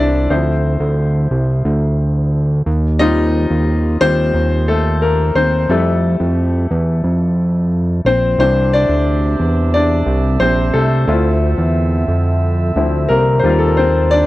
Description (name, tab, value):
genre	piano-driven pop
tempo	89 BPM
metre	4/4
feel	straight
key	unclear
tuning	A4 = 439 Hz
part	bright concert grand piano	accompaniment	0.0-14.3 s	E3 to E5	-17 LUFS	left 2 dB	none
part	fat analog bass	bass	0.0-14.2 s	Bb1 to F2	-15 LUFS	right 1 dB	none
part	mellow woodwind section	sustained chords	8.4-14.3 s	C3 to E5	-24 LUFS	right 3 dB	none
room	little or no reverb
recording	dry, close 1970s-style studio recording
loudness	-13 LUFS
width	side -17 dB against mid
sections	0.0-8.4 A section; 8.4-14.3 B section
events	grand piano solo 0.0-8.4, 8.4-14.3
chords	0.3 Dm7; 2.7 Eb6; 5.7 Fmaj7; 8.4 Cadd9; 11.1 Dm7; 13.4 Eb6